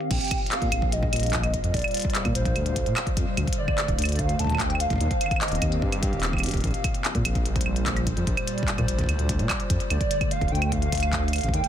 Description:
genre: IDM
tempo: 147 BPM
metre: 4/4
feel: straight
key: Bb major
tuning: A4 = 440 Hz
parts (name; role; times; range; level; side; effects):
- warbly nostalgic lead; melody; 0.0-5.8, 9.9-11.7 s; C5 to A5; -30 LUFS; right 1 dB; ensemble chorus, tape echo
- hollow soft pad; sustained chords; 0.0-11.7 s; Bb2 to F5; -32 LUFS; equal; chorus, vintage 12-bit sampler grit
- glitchy drum kit; drums; 0.0-11.7 s; claves, crash cymbal, handclaps, hi-hat; -29 LUFS; equal; low-pass filter on hats, small room reverb, low-pass filter on cymbals, low-pass filter on perc, soft clipping on snare, low-pass filter on snare
- dark detuned saw bass; bass; 0.1-11.6 s; D1 to Bb2; -26 LUFS; equal; none
- electronic kick drum; drums; 0.1-11.6 s; none; -28 LUFS; equal; small room reverb
room: little or no reverb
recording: dense, heavily limited modern master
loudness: -22 LUFS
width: side -10 dB against mid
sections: 0.1-11.7 A section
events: none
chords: 0.1 Bbsus2; 3.4 Dm7; 5.0 Eb69; 6.6 Bb69; 9.9 Dm7

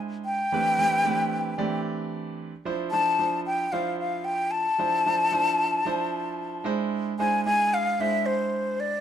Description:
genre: jazz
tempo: 112 BPM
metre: 4/4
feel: swing 55% on 16ths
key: D dorian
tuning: A4 = 441 Hz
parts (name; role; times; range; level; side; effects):
- clear concert grand piano; accompaniment; 0.0-8.9 s; E3 to D5; -29 LUFS; right 5 dB; none
- breathy concert flute; melody; 0.3-9.0 s; C5 to A5; -24 LUFS; left 2 dB; slapback echo, plate reverb
room: moderate studio reverb, RT60 0.8 s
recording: dark, warm production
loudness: -23 LUFS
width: side -9 dB against mid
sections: 0.0-9.0 A section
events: none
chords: 0.0 E7b13; 0.5 Am11/E; 2.7 Dm9; 6.7 E7b13

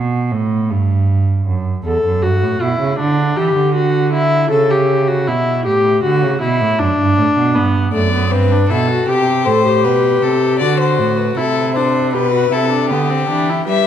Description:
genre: classical, baroque-style fugue for string quartet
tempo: 79 BPM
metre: 4/4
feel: straight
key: G major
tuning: A4 = 440 Hz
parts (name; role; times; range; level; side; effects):
- rich cello; bass; 0.0-13.9 s; E2 to G3; -16 LUFS; right 3 dB; none
- warm viola; accompaniment; 1.9-13.9 s; A3 to A4; -16 LUFS; left 2 dB; none
- rich violin; second line; 7.9-13.9 s; G4 to D5; -17 LUFS; left 6 dB; none
- rich violin; melody; 13.7-13.9 s; E5; -15 LUFS; left 10 dB; none
room: moderate concert hall reverb, RT60 2.2 s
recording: dark, warm production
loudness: -13 LUFS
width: side -9 dB against mid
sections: 0.0-13.7 A section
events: none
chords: 0.0 G; 1.5 Em69; 3.0 Em7/D; 4.5 A7/C#; 6.0 D; 7.6 G; 9.1 Am7; 10.6 D7; 12.1 G/B

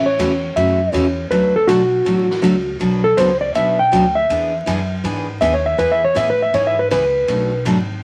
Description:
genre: country, western swing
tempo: 161 BPM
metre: 4/4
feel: swing 65% on 8ths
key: unclear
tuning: A4 = 440 Hz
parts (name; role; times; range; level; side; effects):
- clean lap steel guitar; second line; 0.0-7.6 s; F#4 to G5; -18 LUFS; equal; none
- picked steel-string acoustic guitar; accompaniment; 0.0-7.8 s; B2 to G#4; -22 LUFS; equal; none
- upright bass; bass; 0.0-8.0 s; G#1 to A2; -27 LUFS; equal; none
- swinging big-band drum kit; drums; 0.2-7.8 s; hi-hat, kick drum, ride cymbal, snare drum; -33 LUFS; equal; none
room: moderate studio reverb, RT60 0.7 s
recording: vinyl crackle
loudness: -17 LUFS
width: mono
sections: 0.0-8.0 A section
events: electric slide guitar solo 0.0-8.0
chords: 0.0 A6; 1.3 D; 2.8 Bm; 4.3 E7; 5.8 E; 7.3 Bm7

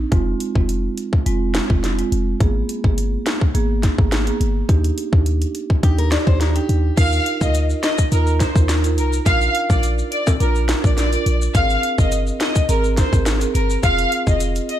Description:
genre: dancehall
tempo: 105 BPM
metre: 4/4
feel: straight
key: Eb major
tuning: A4 = 440 Hz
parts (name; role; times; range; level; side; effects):
- warm 808-style bass; bass; 0.0-14.6 s; F1 to Eb2; -19 LUFS; equal; none
- marimba with medium mallets; accompaniment; 0.1-14.4 s; Ab3 to Bb4; -24 LUFS; right 5 dB; none
- island pop drum kit; drums; 0.1-14.8 s; crash cymbal, hi-hat, kick drum, snare drum; -19 LUFS; equal; none
- picked steel-string acoustic guitar; arpeggios; 5.8-7.0 s; G4 to D5; -28 LUFS; left 7 dB; none
- warm studio violin section; melody; 7.0-14.8 s; Bb4 to F5; -22 LUFS; left 1 dB; none
- maracas and timbales; percussion; 7.0-14.7 s; none; -31 LUFS; left 5 dB; none
room: studio reverb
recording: dark, warm production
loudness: -16 LUFS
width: side -12 dB against mid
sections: 0.0-7.0 A section; 7.0-14.8 B section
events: none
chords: 0.1 Fm; 2.4 Abmadd9; 4.7 Ebmaj7; 7.0 Ebsus2; 9.3 Bb; 11.5 Abadd9; 13.8 Fm

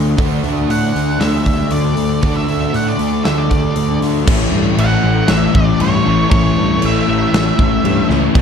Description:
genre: rock, shoegaze and dream pop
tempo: 117 BPM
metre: 4/4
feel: straight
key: unclear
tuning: A4 = 441 Hz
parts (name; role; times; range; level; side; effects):
- overdriven semi-hollow guitar; riff; 0.0-4.3 s; D3 to F#4; -22 LUFS; right 13 dB; reverse reverb
- thick fuzz guitar; riff; 0.0-8.4 s; A2 to D4; -18 LUFS; left 9 dB; distortion, ensemble chorus
- fuzz picked electric bass; bass; 0.0-8.4 s; A1 to A2; -19 LUFS; right 1 dB; overdrive
- big rock drum kit; drums; 0.2-8.4 s; crash cymbal, hi-hat, kick drum, snare drum; -18 LUFS; right 1 dB; none
- octave-fuzz lead guitar; melody; 0.7-8.1 s; C#5 to F#5; -22 LUFS; right 1 dB; distortion, slapback echo
- overdriven semi-hollow guitar; riff; 4.3-8.4 s; A2 to E4; -19 LUFS; right 3 dB; none
room: small room ambience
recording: dark, warm production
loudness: -12 LUFS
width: side -7 dB against mid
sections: 0.0-4.3 A section; 4.3-8.4 B section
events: none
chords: 0.0 Dadd9; 4.3 A

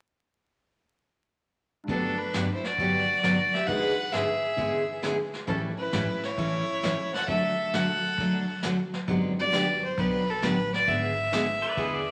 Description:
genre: country, western swing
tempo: 134 BPM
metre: 4/4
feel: swing 68% on 8ths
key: G major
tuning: A4 = 440 Hz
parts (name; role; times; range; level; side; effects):
- warm upright piano; accompaniment; 1.8-10.4 s; D2 to B4; -42 LUFS; equal; none
- rich fiddle; melody; 1.9-12.1 s; A4 to F#5; -30 LUFS; equal; none
- clear fiddle; second line; 1.9-8.6 s; C#4 to B4; -38 LUFS; equal; none
- picked steel-string acoustic guitar; accompaniment; 1.9-12.0 s; G2 to A4; -31 LUFS; equal; none
- vintage brush drum kit; drums; 1.9-12.1 s; brushed snare drum, hi-hat, kick drum, snare drum; -39 LUFS; equal; none
- upright bass; bass; 9.1-12.1 s; G1 to E2; -41 LUFS; equal; none
- pedal steel guitar; second line; 11.6-12.1 s; G#4 to D5; -32 LUFS; equal; none
room: wet large studio reverb, RT60 1.3 s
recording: vinyl crackle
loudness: -27 LUFS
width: mono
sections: 1.9-9.1 A section; 9.1-12.1 B section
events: none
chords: 1.9 Gmaj7; 3.7 E7/G#; 5.5 A7; 7.3 D; 9.1 Gmaj7; 10.9 E7/G#

